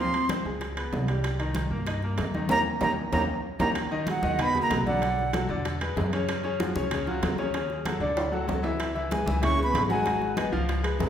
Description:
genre	Afro-Cuban jazz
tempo	190 BPM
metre	4/4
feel	straight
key	G# minor from 3.8 s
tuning	A4 = 440 Hz
part	breathy bright concert flute	melody	0.0-0.3, 2.5-5.5, 9.1-10.5 s	F#5 to C#6	-28 LUFS	right 2 dB	none
part	breathy trombone	second line	0.0-0.3, 2.5-5.5, 9.1-10.5 s	F#3 to C#4	-33 LUFS	right 1 dB	none
part	bright grand piano	accompaniment	0.0-11.1 s	C#3 to F#5	-30 LUFS	left 1 dB	none
part	upright bass	bass	0.0-11.1 s	G#1 to G2	-31 LUFS	equal	none
part	bongos	percussion	0.1-11.1 s	none	-37 LUFS	left 3 dB	none
part	congas	percussion	0.1-11.1 s	none	-35 LUFS	left 1 dB	none
part	timbales	percussion	0.1-11.1 s	none	-35 LUFS	right 3 dB	none
room	wet recital hall reverb, RT60 1.4 s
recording	recorded in a church or concert hall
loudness	-24 LUFS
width	side -9 dB against mid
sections	0.0-3.8 A section; 3.8-11.1 B section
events	band accent 2.5-3.8; drum fill 8.2-8.8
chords	0.0 Dm7b5; 0.6 Db5; 1.2 Cm7; 2.5 Eb7; 3.8 G#m7; 5.0 Bm7; 5.7 E9; 6.3 F#5; 7.5 D#m7b5; 8.2 D; 8.8 C#m7; 10.1 G#m7

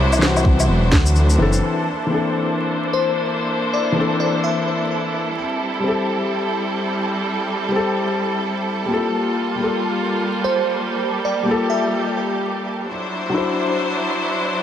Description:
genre	future garage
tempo	128 BPM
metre	4/4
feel	swing 60% on 16ths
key	unclear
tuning	A4 = 442 Hz
part	felt-muted upright piano	accompaniment	0.0-14.6 s	E3 to C5	-22 LUFS	left 3 dB	sidechain pumping, ping-pong delay
part	clear studio string section	sustained chords	0.0-14.6 s	F#3 to C5	-22 LUFS	right 1 dB	sidechain pumping, low-pass filter
part	swelling detuned saw bass	bass	0.0-1.6 s	E1 to D2	-16 LUFS	equal	tube saturation, sidechain pumping
part	electronic shaker, woodblock and snare drum	drums	0.1-1.6 s	none	-22 LUFS	equal	none
part	electronic kick drum	drums	0.4-1.0 s	none	-15 LUFS	equal	none
part	bell-like FM electric piano	melody	2.9-4.9, 10.4-12.2 s	C5 to E5	-24 LUFS	equal	chorus, phaser, ping-pong delay
room	moderate huge ambient reverb, RT60 4.8 s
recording	vinyl crackle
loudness	-18 LUFS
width	side -10 dB against mid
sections	0.0-1.6 A section; 1.6-14.6 B section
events	kick drops out 1.2-1.6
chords	0.0 D9; 1.6 Bbmaj9#11; 5.4 Am7; 9.1 Gm9; 12.9 D9/F#

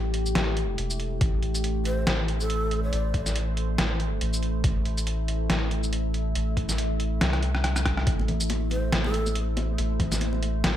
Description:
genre	deep dubstep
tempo	140 BPM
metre	4/4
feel	swing 56% on 16ths, half-time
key	A minor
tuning	A4 = 436 Hz
part	deep dark ambient pad	sustained chords	0.0-10.8 s	A3 to E5	-32 LUFS	right 1 dB	chorus, built-in reverb
part	soft dub sub bass	bass	0.0-10.8 s	E1 to C2	-27 LUFS	equal	none
part	trip hop sampler-style drum kit	drums	0.1-10.7 s	hi-hat, rim click, shaker, snare drum	-28 LUFS	equal	overdrive, gated reverb
part	electronic kick drum	drums	1.2-10.1 s	none	-26 LUFS	equal	overdrive
part	breathy long shakuhachi	melody	1.9-3.4, 8.7-9.4 s	A4 to D5	-34 LUFS	left 1 dB	dub echo
part	congas	percussion	8.2-10.7 s	none	-35 LUFS	left 3 dB	dub echo
room	light reverb, digital ambience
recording	bright 1980s-style digital production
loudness	-24 LUFS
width	side -12 dB against mid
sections	0.0-10.8 A section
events	drum fill 7.2-8.1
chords	0.0 Am

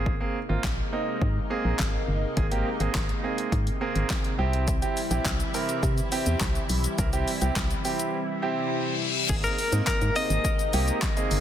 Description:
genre	dance-pop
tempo	104 BPM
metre	4/4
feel	straight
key	Ab major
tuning	A4 = 440 Hz
part	warm concert grand piano	accompaniment	0.0-11.4 s	Bb3 to Bb4	-30 LUFS	right 4 dB	sidechain pumping
part	organ-like FM bass	bass	0.0-11.4 s	G1 to C3	-27 LUFS	equal	sidechain pumping
part	lush unison pad	sustained chords	0.4-11.4 s	C3 to E4	-33 LUFS	left 1 dB	chorus, phaser, sidechain pumping
part	deep house drum kit	drums	0.1-11.4 s	crash cymbal, handclaps, hi-hat, kick drum, shaker, snare drum	-28 LUFS	equal	soft clipping on snare
part	reverse cymbal	sound effects	8.6-9.3 s	none	-30 LUFS	left 6 dB	none
part	direct-recorded clean electric guitar	melody	9.3-11.3 s	Ab4 to Eb5	-28 LUFS	left 3 dB	tremolo, digital delay
part	group handclap	percussion	9.9-11.2 s	none	barely audible	none	none
room	light reverb, digital ambience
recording	dense, heavily limited modern master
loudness	-24 LUFS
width	side -10 dB against mid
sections	0.0-9.3 A section; 9.3-11.4 B section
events	reverse cymbal 8.6-9.3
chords	0.0 Abadd9; 4.4 C; 9.3 Abadd9

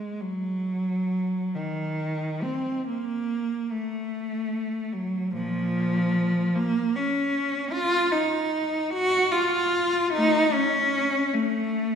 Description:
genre	classical, free, expressive piece for unaccompanied cello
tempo	44-53 BPM (dotted quarters)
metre	6/8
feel	rubato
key	Bb minor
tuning	A4 = 442 Hz
part	rich cello	solo	0.0-12.0 s	Bb2 to Gb4	-23 LUFS	equal	none
room	wet concert hall reverb, RT60 1.9 s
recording	recorded in a church or concert hall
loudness	-23 LUFS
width	side -7 dB against mid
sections	0.0-12.0 A section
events	none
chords	none

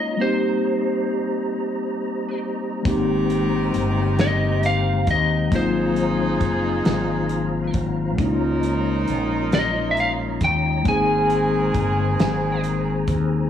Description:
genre	slow six-eight R&B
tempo	45 BPM (dotted quarters)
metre	6/8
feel	straight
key	Ab major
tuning	A4 = 438 Hz
part	lightly driven lead guitar	melody	0.0-12.6 s	C5 to Ab5	-24 LUFS	equal	slapback echo
part	mellow tine electric piano	accompaniment	0.0-13.5 s	Gb3 to Ab4	-23 LUFS	left 2 dB	medium stereo tremolo
part	mellow tonewheel organ	sustained chords	0.0-13.5 s	Ab3 to Bb5	-30 LUFS	right 2 dB	chorus vibrato, fast rotary speaker
part	clear horn section	stabs	2.9-13.0 s	Eb3 to Bb4	-28 LUFS	right 2 dB	none
part	mellow fretless electric bass	bass	2.9-13.5 s	Gb1 to Eb2	-24 LUFS	left 2 dB	none
part	warm soul drum kit	drums	2.9-13.3 s	hi-hat, kick drum, snare drum	-24 LUFS	equal	none
room	light reverb, small room ambience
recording	none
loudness	-19 LUFS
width	side -9 dB against mid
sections	0.0-13.5 A section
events	none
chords	0.2 Cm7; 2.9 Abmaj9; 5.5 Ab13; 8.2 Db69; 10.9 Abmaj9

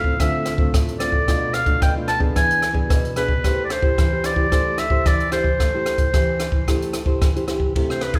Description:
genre	samba and choro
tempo	111 BPM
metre	4/4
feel	straight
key	A minor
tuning	A4 = 439 Hz
part	bright clarinet	melody	0.0-8.2 s	Ab4 to A5	-24 LUFS	equal	none
part	nylon-string guitar	accompaniment	0.0-8.2 s	A2 to C5	-27 LUFS	equal	none
part	compact cocktail drum kit	drums	0.0-8.2 s	hi-hat, kick drum, ride cymbal, rim click	-22 LUFS	equal	none
room	moderate recital hall reverb, RT60 1.4 s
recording	recorded in a church or concert hall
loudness	-20 LUFS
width	mono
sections	0.0-7.8 A section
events	none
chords	0.0 Dm7; 1.3 Bm7b5; 2.4 E7; 3.4 Am7

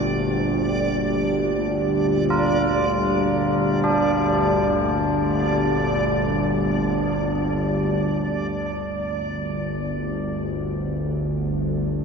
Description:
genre	dark ambient drone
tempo	free time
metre	none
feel	none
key	G minor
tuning	A4 = 440 Hz
part	sweeping resonant pad	sustained chords	0.0-8.0 s	Bb2 to G4	-24 LUFS	equal	chorus, phaser
part	tubular bells	arpeggios	0.0-12.0 s	C4 to Bb4	-28 LUFS	right 1 dB	diffuse ambient delay
part	bowed-like drone	drone	0.0-12.0 s	G1 to D2	-24 LUFS	equal	built-in reverb
part	backwards swelling texture	texture	0.0-8.0 s	D5	-28 LUFS	right 2 dB	built-in reverb
room	wet cathedral reverb, RT60 5.4 s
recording	none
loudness	-20 LUFS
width	side -5 dB against mid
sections	0.0-8.0 A section; 8.0-12.0 B section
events	filter sweep on synth drone 8.0-12.0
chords	0.0 Gm

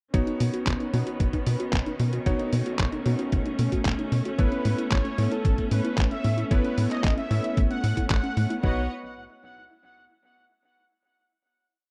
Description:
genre	italo disco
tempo	113 BPM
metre	4/4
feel	straight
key	B mixolydian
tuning	A4 = 441 Hz
part	rich studio string section	sustained chords	0.1-8.9 s	D#3 to F#5	-35 LUFS	equal	none
part	warbly dusty pluck	arpeggios	0.1-8.9 s	A3 to F#4	-36 LUFS	equal	none
part	warm electric grand piano	stabs	0.1-8.8 s	B3 to C#5	-35 LUFS	equal	none
part	tight sequencer bass	bass	0.1-8.9 s	A1 to B2	-28 LUFS	equal	none
part	detuned 8-bit digital drum machine	drums	0.1-8.6 s	handclaps, hi-hat	-36 LUFS	equal	none
part	electronic kick drum	drums	0.1-8.7 s	none	-28 LUFS	equal	none
part	analog synth brass	melody	4.4-8.8 s	A4 to F#5	-36 LUFS	equal	chorus, tape echo
room	little or no reverb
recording	dry, close 1970s-style studio recording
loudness	-25 LUFS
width	mono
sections	0.1-8.6 verse; 8.6-10.8 final chord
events	none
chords	0.1 Badd9; 4.4 Aadd9; 8.6 Badd9

